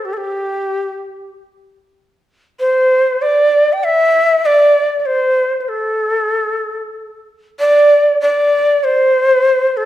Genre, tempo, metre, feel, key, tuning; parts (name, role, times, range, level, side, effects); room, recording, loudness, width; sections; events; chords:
chinese traditional; free time; A4 = 437 Hz
breathy shakuhachi; solo; 0.0-9.9 s; G4 to G5; -12 LUFS; equal
wet recital hall reverb, RT60 1.4 s; -11 LUFS; side -13 dB against mid
0.0-9.9 A section